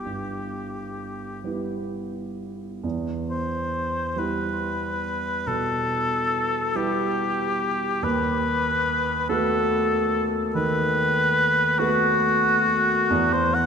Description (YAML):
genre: classical, romantic duo for oboe and grand piano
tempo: 42-49 BPM (dotted quarters)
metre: 12/8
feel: rubato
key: E minor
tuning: A4 = 440 Hz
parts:
  - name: warm oboe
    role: melody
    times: 0.0-13.7 s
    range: F#4 to F#5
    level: -23 LUFS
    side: left 2 dB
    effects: none
  - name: warm concert grand piano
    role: accompaniment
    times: 0.0-13.7 s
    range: D#2 to F#4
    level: -26 LUFS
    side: right 2 dB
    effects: none
room: wet concert hall reverb, RT60 2.5 s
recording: none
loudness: -21 LUFS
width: side -6 dB against mid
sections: 0.0-2.8 A section; 2.8-13.7 A section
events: none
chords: 0.0 Em/G; 2.8 Em; 8.0 B7/D#; 13.1 E5